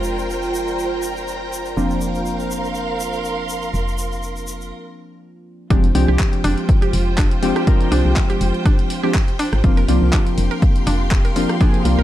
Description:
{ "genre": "deep house", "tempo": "122 BPM", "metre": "4/4", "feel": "swing 54% on 16ths", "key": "F dorian", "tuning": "A4 = 440 Hz", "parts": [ { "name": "hollow soft pad", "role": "sustained chords", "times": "0.0-4.7 s", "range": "Ab3 to C6", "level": "-30 LUFS", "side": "right 3 dB", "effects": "chorus, vintage 12-bit sampler grit, sidechain pumping" }, { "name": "warm analog keys", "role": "stabs", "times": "0.0-12.0 s", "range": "F3 to Bb4", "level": "-23 LUFS", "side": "left 1 dB", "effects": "chorus, sidechain pumping, analog delay" }, { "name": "woody FM bass", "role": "bass", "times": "0.0-12.0 s", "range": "F1 to C2", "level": "-21 LUFS", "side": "equal", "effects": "tube saturation, sidechain pumping" }, { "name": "tube shaker", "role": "percussion", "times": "0.0-4.7 s", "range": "none", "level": "-35 LUFS", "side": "left 3 dB", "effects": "none" }, { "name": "string machine, violins", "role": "texture", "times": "0.0-12.0 s", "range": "G4 to Bb5", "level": "-32 LUFS", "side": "equal", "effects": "ensemble chorus" }, { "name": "warm symphonic string section", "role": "texture", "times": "0.0-12.0 s", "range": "F4 to C6", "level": "-27 LUFS", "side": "right 2 dB", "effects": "sidechain pumping" }, { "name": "mallet-like synth pluck", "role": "arpeggios", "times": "5.7-12.0 s", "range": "D4 to Bb4", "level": "-27 LUFS", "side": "right 3 dB", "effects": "chorus, sidechain pumping, analog delay" }, { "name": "deep house drum kit", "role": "drums", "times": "5.7-12.0 s", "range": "handclaps, hi-hat, rim click", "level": "-27 LUFS", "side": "equal", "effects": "low-pass filter on hats, low-pass filter on snare, low-pass filter on room" }, { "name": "electronic kick drum", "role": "drums", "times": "5.7-11.7 s", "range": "none", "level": "-16 LUFS", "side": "equal", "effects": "none" } ], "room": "light reverb", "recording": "none", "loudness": "-16 LUFS", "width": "side -13 dB against mid", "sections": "0.0-5.7 A section; 5.7-12.0 B section", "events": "break 4.7-5.7; drop 5.7-12.0", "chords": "0.0 Fm69; 1.8 Bbadd9/F; 5.7 Fm69", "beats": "0.29 0.79 1.28 | 1.77 2.26 2.75 3.25 | 3.74 4.23 4.72 5.21 | 5.70 6.20 6.69 7.18 | 7.67 8.16 8.65 9.15 | 9.64 10.13 10.62 11.11 | 11.61" }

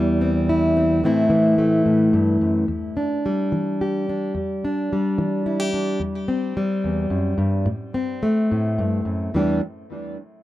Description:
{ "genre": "folk", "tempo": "72 BPM (dotted quarters)", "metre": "6/8", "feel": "straight", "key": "E minor", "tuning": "A4 = 435 Hz", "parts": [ { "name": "fingerpicked plugged-in steel-string acoustic guitar", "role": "solo", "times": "0.0-9.6 s", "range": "E2 to G4", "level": "-19 LUFS", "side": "equal", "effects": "tape echo" } ], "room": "little or no reverb", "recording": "dry, close 1970s-style studio recording", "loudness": "-19 LUFS", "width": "side -15 dB against mid", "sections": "0.0-2.7 A section; 2.7-9.3 B section; 9.3-10.4 C section", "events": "none", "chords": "0.0 C/E; 1.0 Am; 2.7 Em7; 6.0 C/E; 7.7 Am; 9.3 Em7", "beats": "0.19 | 1.02 1.85 | 2.68 3.51 | 4.35 5.18 | 6.01 6.85 | 7.68 8.51 | 9.35" }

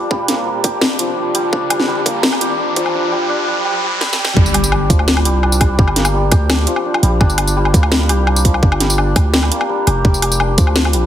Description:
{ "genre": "half-time drum and bass", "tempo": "169 BPM", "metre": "4/4", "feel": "half-time", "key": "G minor", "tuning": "A4 = 439 Hz", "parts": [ { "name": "santur", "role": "arpeggios", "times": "0.0-11.1 s", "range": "F3 to G4", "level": "-18 LUFS", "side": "equal", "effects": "low-pass filter, ping-pong delay" }, { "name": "riser and sub drop", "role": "sound effects", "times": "1.3-5.8 s", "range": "none", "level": "-24 LUFS", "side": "equal", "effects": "none" }, { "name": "electronic kick drum", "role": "drums", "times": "0.1-10.7 s", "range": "none", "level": "-13 LUFS", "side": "equal", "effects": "overdrive, high-pass filter on kick, studio reverb" }, { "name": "drum and bass drum kit", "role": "drums", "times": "0.3-11.0 s", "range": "hi-hat, snare drum, tambourine, woodblock", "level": "-17 LUFS", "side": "left 1 dB", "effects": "overdrive, studio reverb" }, { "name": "long sustained 808-style bass", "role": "bass", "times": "4.4-11.1 s", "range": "F1 to D2", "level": "-16 LUFS", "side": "equal", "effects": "tube saturation" } ], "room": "moderate echo chamber reverb, RT60 1.4 s, digital ambience", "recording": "heavily compressed radio sound, multiband compression, high-pass filter", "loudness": "-12 LUFS", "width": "side -11 dB against mid", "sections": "0.0-4.4 A section; 4.4-11.1 B section", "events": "build-up 0.0-4.4; riser 1.3-4.4; drum fill 4.0-4.4; drop 4.4-11.1; impact 4.4-5.8", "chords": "0.0 Bb6/F; 4.4 Gm; 10.0 N.C.", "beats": "| 0.11 0.46 0.82 1.17 | 1.53 1.88 2.24 2.59 | 2.95 3.30 3.66 4.01 | 4.37 4.72 5.08 5.43 | 5.79 6.14 6.50 6.85 | 7.21 7.56 7.92 8.27 | 8.63 8.98 9.34 9.69 | 10.05 10.40 10.76" }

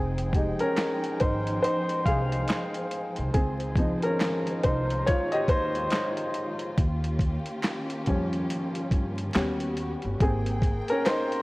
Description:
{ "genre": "lo-fi hip hop", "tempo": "70 BPM", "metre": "4/4", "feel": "swing 60% on 16ths", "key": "F minor", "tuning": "A4 = 438 Hz", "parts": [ { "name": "warm upright piano", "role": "accompaniment", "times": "0.0-11.4 s", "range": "F3 to F5", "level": "-27 LUFS", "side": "equal", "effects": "cassette tape" }, { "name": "warm studio string section", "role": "sustained chords", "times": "0.0-11.4 s", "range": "Eb3 to G5", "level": "-35 LUFS", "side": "equal", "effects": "none" }, { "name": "upright bass", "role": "bass", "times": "0.0-10.8 s", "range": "F1 to G2", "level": "-31 LUFS", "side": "equal", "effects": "none" }, { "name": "boom bap sampler-style drum kit", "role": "drums", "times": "0.2-11.4 s", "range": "handclaps, hi-hat, kick drum, snare drum", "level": "-27 LUFS", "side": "equal", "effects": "none" }, { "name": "finger snaps", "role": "percussion", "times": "0.8-11.3 s", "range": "none", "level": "barely audible", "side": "none", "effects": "none" } ], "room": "light reverb, studio reverb", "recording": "worn, warbling old tape, cassette tape, vinyl crackle, warbly pitch drift", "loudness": "-24 LUFS", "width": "side -21 dB against mid", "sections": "0.0-11.4 A section", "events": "upright piano solo 0.0-11.4", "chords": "0.0 Fm7; 3.3 Dbmaj9; 6.8 Eb9; 9.3 Eb7alt; 10.2 Abmaj9", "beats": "0.78 1.63 2.49 | 3.35 4.21 5.06 5.92 | 6.78 7.63 8.49 9.35 | 10.21 11.06" }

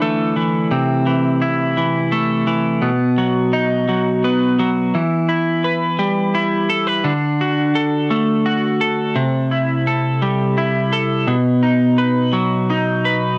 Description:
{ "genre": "pop", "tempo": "57 BPM (dotted quarters)", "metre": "6/8", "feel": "straight", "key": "E minor", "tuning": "A4 = 443 Hz", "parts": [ { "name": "twelve-string electric guitar", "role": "solo", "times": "0.0-13.4 s", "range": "B2 to B4", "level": "-18 LUFS", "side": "equal", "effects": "none" } ], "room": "wet studio reverb, RT60 0.5 s", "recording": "home recording on cassette", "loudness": "-18 LUFS", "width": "mono", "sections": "0.0-4.9 A section; 4.9-13.4 B section", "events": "none", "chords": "0.0 Dsus2; 0.7 Am/C; 2.8 B; 4.9 Em; 7.1 D; 9.2 Am7/C; 11.3 B", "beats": "| 0.73 1.78 | 2.83 3.89 | 4.94 6.00 | 7.05 8.11 | 9.17 10.22 | 11.28 12.34" }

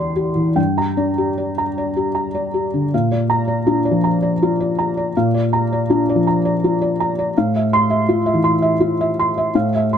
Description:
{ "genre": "neoclassical minimalist piano", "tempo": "76-83 BPM", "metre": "3/4", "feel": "rubato", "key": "unclear", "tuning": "A4 = 435 Hz", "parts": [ { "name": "felt-muted upright piano", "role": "solo", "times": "0.0-10.0 s", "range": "E2 to C6", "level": "-16 LUFS", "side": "equal", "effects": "none" } ], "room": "little or no reverb", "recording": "close, detailed microphones", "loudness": "-15 LUFS", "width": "side -8 dB against mid", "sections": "0.0-2.9 A section; 2.9-10.0 B section", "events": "none", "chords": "0.0 Cadd9/E; 0.6 Gm; 2.9 Bb; 7.3 Fmaj7/A", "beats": "| 0.57 1.37 2.15 | 2.92 3.66 4.41 | 5.14 5.87 6.60 | 7.34 8.07 8.81 | 9.54" }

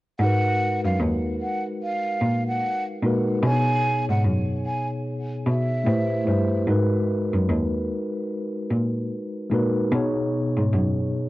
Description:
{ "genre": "lo-fi hip hop", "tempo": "74 BPM", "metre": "4/4", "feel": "swing 61% on 16ths", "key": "unclear", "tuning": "A4 = 441 Hz", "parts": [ { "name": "breathy mellow concert flute", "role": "melody", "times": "0.2-6.6 s", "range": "E5 to G#5", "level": "-27 LUFS", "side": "right 1 dB", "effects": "low-pass filter" }, { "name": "mellow tine electric piano", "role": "accompaniment", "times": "0.2-11.3 s", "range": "B2 to C#5", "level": "-25 LUFS", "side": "equal", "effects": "medium stereo tremolo, cassette tape, low-pass filter" }, { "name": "warm cello", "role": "bass", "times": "0.2-11.1 s", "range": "D#2 to B2", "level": "-24 LUFS", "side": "equal", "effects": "none" } ], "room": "small room ambience", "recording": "dry, gritty hardware recording, cassette tape", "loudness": "-21 LUFS", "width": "side -18 dB against mid", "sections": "0.2-11.3 A section", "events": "none", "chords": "0.2 G#m7; 3.4 B69; 5.9 Am7; 6.7 G#m7; 9.9 B69", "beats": "| 0.19 1.00 1.81 2.62 | 3.43 4.24 5.05 5.86 | 6.67 7.49 8.30 9.11 | 9.92 10.73" }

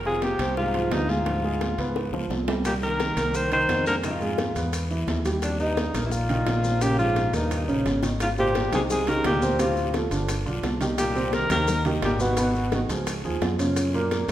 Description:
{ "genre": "Afro-Cuban jazz", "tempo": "173 BPM", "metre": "4/4", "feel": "straight", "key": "Eb major, Ab major from 8.2 s", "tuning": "A4 = 439 Hz", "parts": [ { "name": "modern bright fingered electric bass", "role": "bass", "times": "0.0-14.3 s", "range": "F1 to Gb2", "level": "-29 LUFS", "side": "equal", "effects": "none" }, { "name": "bongos", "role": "percussion", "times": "0.0-14.3 s", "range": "none", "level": "-36 LUFS", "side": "left 6 dB", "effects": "none" }, { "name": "warm alto saxophone", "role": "melody", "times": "0.1-12.9 s", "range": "D4 to C5", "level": "-27 LUFS", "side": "equal", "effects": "none" }, { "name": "breathy baritone saxophone", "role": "second line", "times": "0.1-12.9 s", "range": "F2 to Eb3", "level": "-31 LUFS", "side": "left 2 dB", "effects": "none" }, { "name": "warm upright piano", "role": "accompaniment", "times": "0.1-14.3 s", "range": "Bb2 to F5", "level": "-28 LUFS", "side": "right 2 dB", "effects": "none" }, { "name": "congas", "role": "percussion", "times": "0.1-14.3 s", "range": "none", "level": "-34 LUFS", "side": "equal", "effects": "none" }, { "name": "guiro", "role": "percussion", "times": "0.2-14.3 s", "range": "none", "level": "-41 LUFS", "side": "left 4 dB", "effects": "none" }, { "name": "timbales", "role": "percussion", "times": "0.2-14.3 s", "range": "none", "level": "-36 LUFS", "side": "right 4 dB", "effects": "none" }, { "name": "maracas", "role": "percussion", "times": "2.6-14.3 s", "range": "none", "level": "-40 LUFS", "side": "left 4 dB", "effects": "none" } ], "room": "wet recital hall reverb, RT60 1.7 s", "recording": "recorded in a church or concert hall", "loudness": "-22 LUFS", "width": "side -12 dB against mid", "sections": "0.0-8.2 A section; 8.2-14.3 B section", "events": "drum fill 2.0-2.6, 7.3-8.2", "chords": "0.0 Fmadd9; 1.3 Ddim; 2.0 Db7; 2.6 Cm7; 4.0 Fm7; 4.7 E5; 5.4 Ebadd9; 6.8 Bbm7; 7.5 Eb7; 8.2 Abmaj9; 9.6 Dm7; 10.3 G7b13; 11.0 Cm7; 12.4 Abm7; 13.1 Dbadd9; 13.8 Gbmaj7", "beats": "0.22 0.57 0.91 | 1.26 1.61 1.96 2.30 | 2.65 3.00 3.34 3.69 | 4.04 4.39 4.73 5.08 | 5.43 5.78 6.12 6.47 | 6.82 7.16 7.51 7.86 | 8.21 8.55 8.90 9.25 | 9.59 9.94 10.29 10.64 | 10.98 11.33 11.68 12.03 | 12.37 12.72 13.07 13.42 | 13.77 14.12" }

